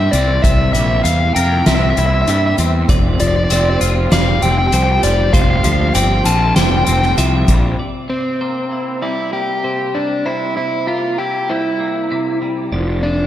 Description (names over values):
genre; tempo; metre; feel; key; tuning
post-rock; 98 BPM; 4/4; straight; unclear; A4 = 438 Hz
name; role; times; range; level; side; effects
overdriven electric guitar; melody; 0.0-13.3 s; C4 to A5; -18 LUFS; equal; slapback echo, tape echo
warm studio string section; sustained chords; 0.0-7.8, 12.7-13.3 s; C3 to G5; -27 LUFS; right 4 dB; none
twangy electric guitar; arpeggios; 0.0-13.3 s; C3 to Bb4; -22 LUFS; left 2 dB; ensemble chorus, slapback echo, tape echo
fuzz picked electric bass; bass; 0.0-7.7, 12.7-13.3 s; F1 to G2; -16 LUFS; equal; overdrive
soft-mallet drum kit; drums; 0.1-7.6 s; hi-hat, kick drum, snare drum; -18 LUFS; equal; none
clean electric guitar; arpeggios; 2.9-13.3 s; C5 to E5; -27 LUFS; right 4 dB; slapback echo, tape echo
room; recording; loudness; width
moderate lush hall reverb, RT60 2.5 s; big arena sound, lossy compression artefacts; -13 LUFS; side -12 dB against mid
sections
0.0-7.8 A section; 7.8-13.3 B section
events
none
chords
0.0 C7; 2.9 Fsus2; 7.8 C7; 12.7 Fsus2